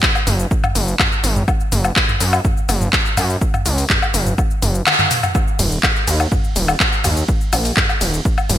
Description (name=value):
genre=melodic techno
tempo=124 BPM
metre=4/4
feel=straight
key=Eb minor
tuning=A4 = 440 Hz
part: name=electronic kick drum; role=drums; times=0.0-8.4 s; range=none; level=-19 LUFS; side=equal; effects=none
part: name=house drum kit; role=drums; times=0.0-8.6 s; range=handclaps, hi-hat, ride cymbal, shaker, toms, woodblock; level=-17 LUFS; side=left 1 dB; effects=sidechain pumping on hats, sidechain pumping on perc, sidechain pumping on toms, sidechain pumping on cymbals, gated reverb
part: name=gritty driven synth bass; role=bass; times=0.3-8.6 s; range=Eb1 to Gb2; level=-18 LUFS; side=equal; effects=sidechain pumping
room=light reverb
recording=bright 1980s-style digital production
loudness=-14 LUFS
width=side -11 dB against mid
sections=0.0-5.3 A section; 5.3-8.6 A section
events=drop 0.0-5.3, 5.3-8.6; kick drops out 4.9-5.3; drum fill 4.9-5.3; band accent 4.9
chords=none